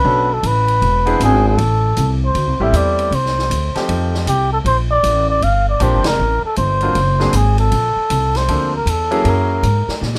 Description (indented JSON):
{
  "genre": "jazz, small-group swing and bop",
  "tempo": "156 BPM",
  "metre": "4/4",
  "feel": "swing 64% on 8ths",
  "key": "unclear",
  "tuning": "A4 = 440 Hz",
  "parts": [
    { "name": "trumpet with cup mute", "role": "melody", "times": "0.0-10.0 s", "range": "G4 to F5", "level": "-20 LUFS", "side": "equal", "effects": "none" },
    { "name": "clear grand piano", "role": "accompaniment", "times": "0.0-9.6 s", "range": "F3 to A4", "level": "-23 LUFS", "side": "equal", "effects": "none" },
    { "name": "upright bass", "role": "bass", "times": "0.0-10.2 s", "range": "E1 to Bb2", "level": "-19 LUFS", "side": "equal", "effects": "none" },
    { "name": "swinging big-band drum kit", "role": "drums", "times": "0.4-10.2 s", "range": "hi-hat, ride cymbal, snare drum", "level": "-30 LUFS", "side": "equal", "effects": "none" }
  ],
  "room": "light reverb",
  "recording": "rough home demo mix",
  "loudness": "-16 LUFS",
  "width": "mono",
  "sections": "0.0-10.2 A section",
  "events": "band accent 6.0; drum fill 10.0",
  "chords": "0.1 Bm7; 0.8 E7b13; 1.6 Am7; 3.1 Cmadd9; 3.9 F9; 4.7 Bb69; 6.2 Gm11; 7.0 Daug7; 7.7 Bbmaj9#11; 9.3 Gb9"
}